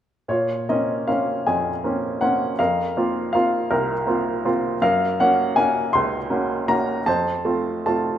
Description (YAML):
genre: classical, lyrical solo piano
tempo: 53 BPM (dotted quarters)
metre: 6/8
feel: rubato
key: Bb minor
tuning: A4 = 439 Hz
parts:
  - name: bright upright piano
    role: solo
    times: 0.3-8.2 s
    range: C2 to C6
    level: -19 LUFS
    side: equal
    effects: none
room: moderate recital hall reverb, RT60 1.5 s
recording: minimal, uncompressed stereo recording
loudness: -19 LUFS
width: side -10 dB against mid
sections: 0.3-8.2 A section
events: none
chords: 0.3 Bbmadd9; 2.6 Fsus4; 4.8 Gb; 7.1 F